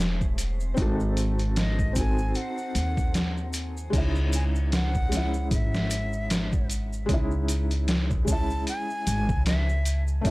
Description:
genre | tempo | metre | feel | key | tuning
trip hop | 76 BPM | 4/4 | swing 57% on 16ths | C# harmonic minor | A4 = 440 Hz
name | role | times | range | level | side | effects
breathy jazz flute | melody | 0.0-10.3 s | D#5 to A5 | -35 LUFS | equal | dub echo
felt-muted upright piano | accompaniment | 0.0-10.3 s | G#3 to A4 | -32 LUFS | left 1 dB | tremolo
upright bass | bass | 0.0-10.3 s | E1 to D#2 | -26 LUFS | equal | none
backwards swelling texture | texture | 0.0-4.0 s | B#3 | -43 LUFS | equal | none
trip hop sampler-style drum kit | drums | 0.2-10.3 s | crash cymbal, hi-hat, kick drum, snare drum | -27 LUFS | equal | none
maracas | percussion | 0.2-10.3 s | none | -39 LUFS | equal | none
room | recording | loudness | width
studio ambience | dry, gritty hardware recording, transformer saturation | -23 LUFS | side -21 dB against mid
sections
0.0-3.9 A section; 3.9-10.3 B section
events
filter sweep on felt piano 0.0-3.9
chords
0.0 Amaj7; 0.8 G#7b9; 3.9 C#madd9

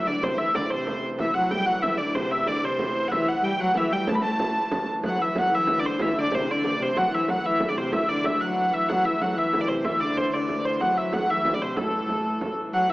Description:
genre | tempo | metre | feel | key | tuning
medieval dance | 125 BPM (dotted quarters) | 6/8 | straight | A dorian | A4 = 438 Hz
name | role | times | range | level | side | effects
rich hurdy-gurdy | melody | 0.0-12.9 s | A4 to B5 | -24 LUFS | equal | none
warm viola da gamba | second line | 0.0-12.9 s | A2 to A3 | -28 LUFS | left 1 dB | none
warm hurdy-gurdy | drone | 0.0-12.9 s | A2 to E3 | -34 LUFS | equal | none
frame drum | percussion | 0.2-12.7 s | none | -32 LUFS | right 2 dB | none
room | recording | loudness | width
wet scoring stage reverb, RT60 1.9 s | small speaker sound | -22 LUFS | side -19 dB against mid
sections
0.0-5.0 A section; 5.0-12.7 B section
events
none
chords
none

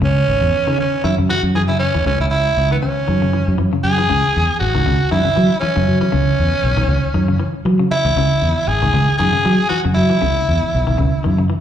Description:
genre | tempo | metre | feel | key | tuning
afrobeat | 118 BPM | 4/4 | swing 55% on 16ths | C# minor | A4 = 441 Hz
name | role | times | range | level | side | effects
raspy tenor saxophone | melody | 0.0-11.4 s | B3 to G#4 | -18 LUFS | right 1 dB | slapback echo
clean electric guitar | arpeggios | 0.0-11.6 s | C#3 to E3 | -22 LUFS | left 4 dB | slapback echo, tape echo
fingered electric bass | bass | 0.0-11.5 s | G#1 to F#3 | -16 LUFS | right 1 dB | none
room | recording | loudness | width
studio reverb | live gig heard through the venue's PA, club reverb, nothing above 10.9 kHz | -14 LUFS | side -10 dB against mid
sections
0.0-4.1 A section; 4.1-11.6 B section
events
none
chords
0.0 N.C.; 1.0 F#5; 2.1 N.C.; 3.1 F#5; 4.1 C#5; 5.1 F#5; 6.1 C#7(no3); 7.2 F#5; 8.2 C#m; 9.2 F#sus2; 10.2 C#m7

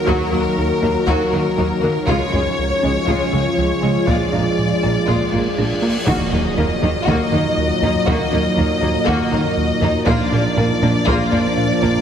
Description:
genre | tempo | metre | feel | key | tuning
cinematic, hybrid orchestral and electronic film score | 120 BPM | 4/4 | straight | Eb harmonic minor from 6.1 s | A4 = 437 Hz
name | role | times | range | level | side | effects
rich symphonic violin section | melody | 0.0-12.0 s | Bb4 to Eb5 | -23 LUFS | left 3 dB | none
dark trombone section | sustained chords | 0.0-12.0 s | Bb2 to Ab3 | -24 LUFS | right 4 dB | none
ethereal airy pad | sustained chords | 0.0-12.0 s | F3 to F5 | -25 LUFS | left 1 dB | ensemble chorus, built-in reverb
mellow French horn section | sustained chords | 0.0-12.0 s | Bb3 to Gb4 | -26 LUFS | left 5 dB | none
warm symphonic violin section | second line | 0.1-11.9 s | Ab3 to Gb4 | -26 LUFS | left 3 dB | none
rich studio viola section | accompaniment | 0.1-11.9 s | Gb3 to Bb3 | -27 LUFS | equal | none
thumb-piano-like synth pluck | arpeggios | 0.1-12.0 s | Db3 to Bb4 | -29 LUFS | right 2 dB | none
rubbery square bass | riff | 0.1-12.0 s | Db2 to Bb3 | -24 LUFS | right 1 dB | none
rich studio cello section | bass | 0.1-11.9 s | Db2 to Eb3 | -26 LUFS | right 2 dB | none
rich symphonic double bass section | bass | 0.1-11.9 s | Bb1 to Eb2 | -27 LUFS | right 3 dB | none
taiko ensemble | drums | 0.1-12.0 s | none | -26 LUFS | equal | none
cymbal swell and impact | sound effects | 5.3-8.1 s | none | -28 LUFS | equal | none
room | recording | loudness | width
moderate scoring stage reverb, RT60 1.9 s | heavily compressed radio sound, multiband compression | -15 LUFS | side -8 dB against mid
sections
0.0-6.1 A section; 6.1-12.0 B section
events
cymbal swell 5.3-6.1; impact 6.1-8.1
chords
0.0 Ebm; 2.1 Db; 4.1 Bb7; 6.1 Ebm; 10.1 Bb

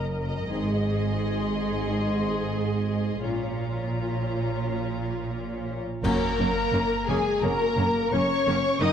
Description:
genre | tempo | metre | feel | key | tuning
cinematic, epic orchestral film score | 87 BPM | 4/4 | straight | unclear | A4 = 440 Hz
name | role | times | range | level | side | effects
warm symphonic violin section | melody | 0.0-8.9 s | Ab5 to Eb6 | -35 LUFS | left 3 dB | none
warm symphonic violin section | second line | 0.0-8.9 s | Ab4 to Eb5 | -32 LUFS | left 4 dB | none
rich studio viola section | accompaniment | 0.0-8.9 s | Bb3 to Bb4 | -32 LUFS | equal | none
rich symphonic cello section | bass | 0.0-8.9 s | Gb2 to Bb2 | -30 LUFS | right 3 dB | none
warm symphonic double bass section | bass | 0.0-8.9 s | Gb1 to Bb1 | -30 LUFS | right 2 dB | none
mellow French horn section | sustained chords | 0.5-8.9 s | Ab3 to F4 | -33 LUFS | left 4 dB | none
mellow concert flute | second line | 6.0-8.9 s | Ab4 to Eb5 | -32 LUFS | left 2 dB | none
clear trombone section | sustained chords | 6.0-8.9 s | Eb3 to Eb4 | -36 LUFS | right 3 dB | none
mellow trumpet | stabs | 6.0-8.9 s | Ab4 to Eb5 | -31 LUFS | right 2 dB | none
clash cymbals and concert bass drum | percussion | 6.0-7.4 s | none | -34 LUFS | left 1 dB | none
room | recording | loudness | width
wet scoring stage reverb, RT60 1.8 s | worn, warbling old tape, cassette tape, warbly pitch drift | -24 LUFS | side -8 dB against mid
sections
0.0-6.1 A section; 6.1-8.9 B section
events
band accent 6.1-6.7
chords
0.5 Ab; 3.2 Bbm; 6.1 Gb

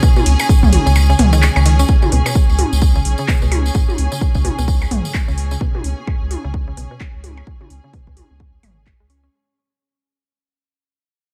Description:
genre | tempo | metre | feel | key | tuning
minimal techno | 129 BPM | 4/4 | swing 59% on 16ths | unclear | A4 = 440 Hz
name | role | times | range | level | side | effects
mallet-like synth pluck | riff | 0.0-9.3 s | G#2 to C#4 | -26 LUFS | equal | chorus, sidechain pumping, digital delay
electronic kick drum | drums | 0.0-9.0 s | none | -17 LUFS | equal | studio reverb
tambourine | percussion | 0.0-5.6 s | none | -31 LUFS | equal | none
bright symphonic string section | texture | 0.0-9.3 s | C#4 to G#5 | -27 LUFS | equal | sidechain pumping
electronic toms and percussion blips | percussion | 0.2-8.7 s | none | -24 LUFS | equal | studio reverb, delay
round analog bass | bass | 0.3-9.3 s | G#1 to C#2 | -17 LUFS | equal | tube saturation, sidechain pumping
house drum kit | drums | 0.3-9.2 s | handclaps, hi-hat, ride cymbal | -26 LUFS | equal | studio reverb
room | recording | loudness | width
little or no reverb | none | -15 LUFS | mono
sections
0.0-1.9 A section; 1.9-9.3 B section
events
drop 0.0-1.9; kick drops out 1.0-1.9; fade-out 1.9-9.3; filter sweep on synth arpeggio sound 1.9-9.3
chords
0.0 C#5

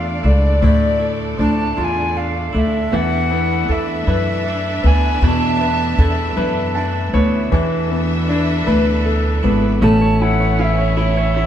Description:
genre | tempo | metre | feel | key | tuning
six-eight pop ballad | 52 BPM (dotted quarters) | 6/8 | straight | unclear | A4 = 440 Hz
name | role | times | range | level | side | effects
mellow tenor recorder | melody | 0.0-11.5 s | D5 to A5 | -22 LUFS | equal | none
clear concert grand piano | accompaniment | 0.0-11.5 s | A2 to A5 | -21 LUFS | left 1 dB | none
rich studio string section | sustained chords | 0.0-11.5 s | A3 to E5 | -26 LUFS | equal | none
direct-recorded clean electric guitar | arpeggios | 0.0-11.5 s | E2 to E4 | -27 LUFS | right 3 dB | phaser
upright bass | bass | 0.0-11.5 s | G#1 to F#2 | -17 LUFS | equal | none
room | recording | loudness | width
wet stone room reverb, RT60 1.3 s | band playing live in one room | -14 LUFS | side -10 dB against mid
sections
0.0-7.5 A section; 7.5-9.8 B section; 9.8-11.5 C section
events
grand piano fill 6.4-7.5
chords
0.0 Dmadd9; 2.9 E7sus4; 9.8 Aadd9

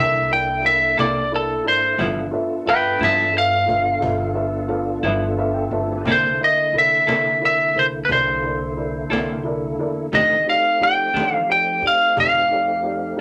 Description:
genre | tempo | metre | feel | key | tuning
slow blues | 59 BPM (dotted quarters) | 12/8 | straight | C mixolydian | A4 = 438 Hz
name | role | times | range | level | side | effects
lightly driven lead guitar | melody | 0.0-13.2 s | A4 to A5 | -19 LUFS | equal | none
dark upright piano | accompaniment | 0.0-13.2 s | Eb4 to A5 | -29 LUFS | equal | none
tonewheel organ | sustained chords | 0.0-13.2 s | D3 to D5 | -31 LUFS | equal | chorus vibrato, slow rotary speaker
upright bass | bass | 0.0-13.1 s | G1 to F3 | -32 LUFS | equal | none
cajon | drums | 0.3-12.9 s | none | -36 LUFS | equal | none
semi-hollow electric guitar | accompaniment | 1.0-11.4 s | F2 to A4 | -26 LUFS | equal | tremolo
room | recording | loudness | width
moderate studio reverb, RT60 0.5 s | none | -19 LUFS | mono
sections
0.0-6.1 A section; 6.1-13.2 B section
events
lead electric guitar solo 0.0-6.1; kick and snare drop out 5.0-6.1; upright piano fill 5.0-6.1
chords
0.0 C13; 2.0 G13; 6.1 C13; 10.1 F13

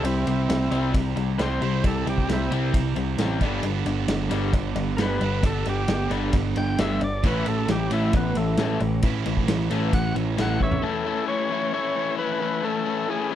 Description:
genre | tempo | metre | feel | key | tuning
classic rock | 133 BPM | 4/4 | straight | unclear | A4 = 440 Hz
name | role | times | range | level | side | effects
overdriven tonewheel organ | melody | 0.0-13.3 s | A3 to G5 | -28 LUFS | equal | none
cranked stack guitar | riff | 0.0-10.8 s | G2 to E4 | -29 LUFS | right 11 dB | overdrive
crunchy overdriven guitar | riff | 0.0-13.3 s | G2 to E4 | -28 LUFS | left 9 dB | none
growling picked electric bass | bass | 0.0-10.8 s | G1 to C2 | -26 LUFS | equal | overdrive
vintage drum kit | drums | 0.0-10.8 s | kick drum, ride cymbal, snare drum, toms | -28 LUFS | equal | none
room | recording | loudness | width
studio reverb | none | -21 LUFS | side -11 dB against mid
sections
0.0-10.8 A section; 10.8-13.3 B section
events
tonewheel organ solo 0.0-10.8; drum fill 10.6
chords
0.0 C; 3.4 G; 7.2 A

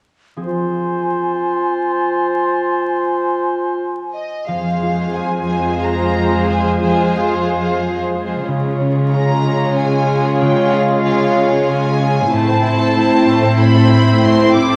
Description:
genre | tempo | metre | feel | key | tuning
cinematic | 92 BPM | 3/4 | rubato | F minor | A4 = 440 Hz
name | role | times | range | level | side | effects
concert harp | arpeggios | 0.4-14.8 s | A2 to F5 | -25 LUFS | equal | none
mellow hollow concert flute | second line | 0.5-4.1 s | Ab5 | -25 LUFS | equal | none
warm clarinet | second line | 0.5-4.1 s | F4 | -22 LUFS | equal | none
warm oboe | second line | 0.5-4.1 s | C5 | -25 LUFS | equal | none
warm studio violin section | melody | 4.1-14.8 s | Eb5 to D6 | -24 LUFS | equal | none
rich studio violin section | second line | 4.5-14.8 s | A3 to Db5 | -22 LUFS | equal | none
warm studio viola section | accompaniment | 4.5-14.8 s | Ab3 to F4 | -20 LUFS | equal | none
warm studio cello section | bass | 4.5-14.8 s | F2 to Db3 | -20 LUFS | equal | transformer saturation
room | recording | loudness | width
wet scoring stage reverb, RT60 1.9 s | worn, warbling old tape, cassette tape, vinyl crackle, warbly pitch drift | -16 LUFS | mono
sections
0.5-4.5 A section; 4.5-14.8 B section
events
none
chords
0.5 Fm; 8.5 Db; 12.3 Am

